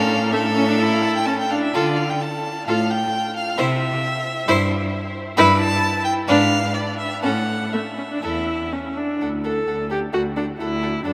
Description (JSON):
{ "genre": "quick classical-period movement for string quartet", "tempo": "119-136 BPM", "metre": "4/4", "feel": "rubato", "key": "D major from 5.4 s", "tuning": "A4 = 440 Hz", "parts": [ { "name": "rich violin", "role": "melody", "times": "0.0-11.1 s", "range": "D5 to B5", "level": "-27 LUFS", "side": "equal", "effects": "none" }, { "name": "clear violin", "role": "second line", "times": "0.0-11.1 s", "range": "A4 to C5", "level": "-29 LUFS", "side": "equal", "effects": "none" }, { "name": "rich viola", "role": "accompaniment", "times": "0.0-11.1 s", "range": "A3 to A4", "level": "-25 LUFS", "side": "equal", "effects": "none" }, { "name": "clear cello", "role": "bass", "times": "0.0-11.1 s", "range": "D2 to D3", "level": "-27 LUFS", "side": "equal", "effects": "none" } ], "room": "wet huge ambient reverb, RT60 7.4 s", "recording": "in a vast, echoing space", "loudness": "-21 LUFS", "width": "mono", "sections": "0.0-9.2 A section; 9.2-11.1 B section", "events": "none", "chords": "0.0 A; 1.7 Dm; 3.6 C; 5.4 Em/G; 6.3 G#dim7; 7.2 A; 9.2 D", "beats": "0.33 0.80 1.27 | 1.75 2.21 2.67 3.13 | 3.58 4.03 4.48 4.93 | 5.38 5.83 6.28 6.74 | 7.23 7.72 8.22 8.72 | 9.21 9.68 10.14 10.61 | 11.06" }